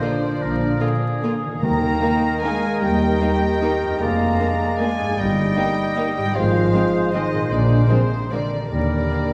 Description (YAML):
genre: classical, orchestral ballroom waltz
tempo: 152 BPM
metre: 3/4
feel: uneven beats, rubato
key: Eb major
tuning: A4 = 440 Hz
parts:
  - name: dark studio violin section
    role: melody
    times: 0.0-9.3 s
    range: C5 to Bb5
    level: -31 LUFS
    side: equal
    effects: none
  - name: clear oboe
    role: second line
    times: 0.0-9.3 s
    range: Ab4 to Eb5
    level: -31 LUFS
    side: equal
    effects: none
  - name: clear studio violin section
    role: second line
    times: 0.0-9.2 s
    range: Bb3 to F4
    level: -35 LUFS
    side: equal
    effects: none
  - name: mellow concert flute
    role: second line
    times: 0.0-9.2 s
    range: Ab4 to G5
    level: -31 LUFS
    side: equal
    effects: none
  - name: mellow bassoon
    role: accompaniment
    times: 0.0-9.3 s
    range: Eb3 to Ab3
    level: -30 LUFS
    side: equal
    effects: none
  - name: warm studio viola section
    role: accompaniment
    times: 0.0-9.3 s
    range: D3 to Bb3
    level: -32 LUFS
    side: equal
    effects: none
  - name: mellow French horn section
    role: sustained chords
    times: 0.0-9.3 s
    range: C4 to Bb4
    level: -30 LUFS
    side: equal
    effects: none
  - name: concert harp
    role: arpeggios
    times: 0.0-9.3 s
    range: F2 to C5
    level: -32 LUFS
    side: equal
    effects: none
  - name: warm studio cello section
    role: bass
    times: 0.0-9.3 s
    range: C3 to Bb3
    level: -28 LUFS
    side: equal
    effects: none
  - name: dark tuba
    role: bass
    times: 0.4-9.1 s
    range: F1 to Eb2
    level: -31 LUFS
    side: equal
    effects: none
  - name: warm studio double bass section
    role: bass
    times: 0.4-9.1 s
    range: G1 to F2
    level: -27 LUFS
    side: equal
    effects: none
  - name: timpani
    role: percussion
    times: 1.6-2.2 s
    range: Eb3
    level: -31 LUFS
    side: equal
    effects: none
room: wet scoring stage reverb, RT60 1.9 s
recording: heard from further back in the room, vinyl crackle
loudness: -20 LUFS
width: mono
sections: 0.0-9.3 A section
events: none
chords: 0.0 Bb; 1.6 Eb; 4.0 Bb7/F; 5.2 Eb/G; 6.4 Fm/Ab; 7.5 Bb9; 8.7 Eb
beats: 0.02 | 0.41 0.81 1.23 | 1.63 2.02 2.44 | 2.82 3.22 3.62 | 4.01 4.40 4.80 | 5.18 5.57 5.97 | 6.35 6.74 7.13 | 7.51 7.90 8.31 | 8.71 9.12